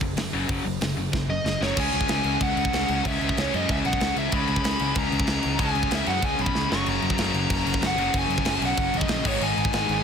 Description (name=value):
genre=punk rock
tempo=188 BPM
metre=4/4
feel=straight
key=unclear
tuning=A4 = 440 Hz
part: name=cranked stack guitar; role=riff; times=0.0-10.0 s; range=F#2 to C#4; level=-30 LUFS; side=left 12 dB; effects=overdrive
part: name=sludgy distorted guitar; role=riff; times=0.0-10.0 s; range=F#2 to C#4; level=-31 LUFS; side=right 15 dB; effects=overdrive
part: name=picked electric bass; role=bass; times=0.0-10.0 s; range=E1 to F#2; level=-30 LUFS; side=equal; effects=none
part: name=tight metal drum kit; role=drums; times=0.0-10.0 s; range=crash cymbal, hi-hat, kick drum, snare drum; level=-27 LUFS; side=equal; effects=soft clipping on kick
part: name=smooth overdriven lead guitar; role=melody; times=1.3-10.0 s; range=C#5 to C#6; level=-28 LUFS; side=equal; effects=none
part: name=distorted electric guitar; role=riff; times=1.8-10.0 s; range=F#2 to D#4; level=-32 LUFS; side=equal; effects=overdrive
room=little or no reverb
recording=dense, heavily limited modern master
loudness=-22 LUFS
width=side -7 dB against mid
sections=0.0-1.8 A section; 1.8-10.0 B section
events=drum fill 1.1-1.8, 6.5-6.9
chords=0.0 F#5; 1.8 C#m; 6.7 F#; 9.2 G#m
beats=0.17 | 0.49 0.81 1.13 1.45 | 1.76 2.08 2.40 2.72 | 3.04 3.36 3.68 4.00 | 4.32 4.64 4.96 5.27 | 5.59 5.91 6.23 6.55 | 6.87 7.18 7.50 7.82 | 8.14 8.46 8.77 9.09 | 9.41 9.72